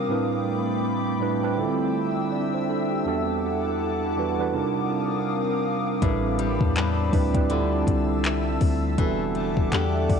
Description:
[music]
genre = contemporary R&B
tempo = 81 BPM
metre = 4/4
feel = swing 58% on 16ths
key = A minor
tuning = A4 = 440 Hz
[part]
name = mellow tine electric piano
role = accompaniment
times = 0.0-10.2 s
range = E2 to G5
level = -26 LUFS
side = right 8 dB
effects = medium stereo tremolo
[part]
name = glassy FM pad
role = sustained chords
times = 0.0-10.2 s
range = A3 to E6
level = -28 LUFS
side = left 4 dB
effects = ensemble chorus, built-in reverb
[part]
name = nylon-string guitar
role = arpeggios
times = 6.0-10.2 s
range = A2 to G4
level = -29 LUFS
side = left 9 dB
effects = analog delay
[part]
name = long sustained 808-style bass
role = bass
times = 6.0-10.2 s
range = E1 to E2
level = -26 LUFS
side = left 2 dB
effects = none
[part]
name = smooth R&B drum kit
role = drums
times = 6.0-10.2 s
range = handclaps, hi-hat, kick drum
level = -25 LUFS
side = left 2 dB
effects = cassette tape
[sound]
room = light reverb, digital ambience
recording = home recording on cassette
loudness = -22 LUFS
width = side -6 dB against mid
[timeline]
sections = 0.0-10.2 A section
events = none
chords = 0.1 Am11; 1.6 Dm11; 3.1 Em11; 4.5 Cm11; 6.0 Am11; 7.5 Dm11; 9.0 Em11

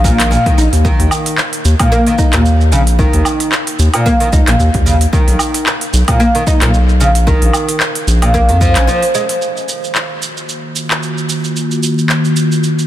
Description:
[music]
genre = organic downtempo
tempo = 112 BPM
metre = 4/4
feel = swing 56% on 16ths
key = Eb minor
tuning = A4 = 441 Hz
[part]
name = oud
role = arpeggios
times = 0.0-9.2 s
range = Bb2 to Eb4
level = -15 LUFS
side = equal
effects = ping-pong delay
[part]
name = round analog bass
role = bass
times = 0.0-8.9 s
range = Bb1 to F2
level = -11 LUFS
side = equal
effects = sidechain pumping
[part]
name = electronic kick drum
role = drums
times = 0.0-8.7 s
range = none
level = -15 LUFS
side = equal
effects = overdrive, small room ambience
[part]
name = organic electronic drum kit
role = drums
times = 0.1-12.9 s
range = handclaps, hi-hat, shaker, woodblock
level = -18 LUFS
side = right 1 dB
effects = small room ambience
[part]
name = warbly tape-like pad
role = sustained chords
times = 10.5-12.9 s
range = Eb3 to Gb4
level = -15 LUFS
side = equal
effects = chorus, built-in reverb, sidechain pumping
[sound]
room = light reverb, digital ambience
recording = dense, heavily limited modern master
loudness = -10 LUFS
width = side -13 dB against mid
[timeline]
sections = 0.0-9.4 A section; 9.4-12.9 B section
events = break 8.9-9.4; filter sweep on ambient pad 9.4-12.9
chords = 0.0 Bbsus4; 0.8 Eb5; 5.1 Bmaj7; 7.3 Bb5; 9.4 Ebmadd9

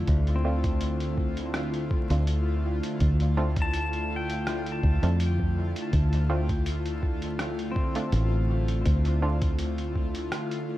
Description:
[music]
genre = ambient dub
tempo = 82 BPM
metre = 4/4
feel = swing 54% on 16ths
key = D minor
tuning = A4 = 440 Hz
[part]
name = airy breathy pad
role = sustained chords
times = 0.0-10.8 s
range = D3 to F4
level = -32 LUFS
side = left 1 dB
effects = chorus
[part]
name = fingered electric bass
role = bass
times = 0.0-10.3 s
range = A1 to F2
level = -26 LUFS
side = equal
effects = none
[part]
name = electronic kick drum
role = drums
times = 0.1-10.1 s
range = none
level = -28 LUFS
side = equal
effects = overdrive
[part]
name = lo-fi sampler-style drum kit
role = drums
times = 0.1-10.7 s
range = hi-hat, rim click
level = -38 LUFS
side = equal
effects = overdrive, dub echo
[part]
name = pedal steel guitar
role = arpeggios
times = 0.4-10.1 s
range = C4 to A5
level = -37 LUFS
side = left 2 dB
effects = dub echo
[part]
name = filtered dub chord stab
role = stabs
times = 0.4-9.4 s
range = A3 to F4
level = -38 LUFS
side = right 2 dB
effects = chorus, dub echo
[sound]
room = little or no reverb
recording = echo-heavy mix, vinyl crackle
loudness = -24 LUFS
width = side -15 dB against mid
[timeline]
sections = 0.0-10.8 A section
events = none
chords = 0.0 Dm7

